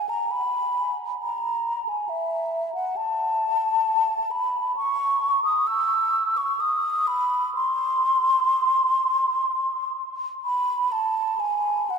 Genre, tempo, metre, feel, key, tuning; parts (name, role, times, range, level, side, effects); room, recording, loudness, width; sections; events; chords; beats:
classical, free, expressive piece for unaccompanied flute; 59-70 BPM; 3/4; rubato; A4 = 440 Hz
mellow hollow concert flute; solo; 0.0-12.0 s; E5 to E6; -21 LUFS; equal
wet cathedral reverb, RT60 6.2 s; in a vast, echoing space; -21 LUFS; side -6 dB against mid
0.0-12.0 A section
0.32 1.21 | 2.09 2.96 3.84 | 4.75 5.67 6.60 | 7.54 8.48 9.46 | 10.44 11.39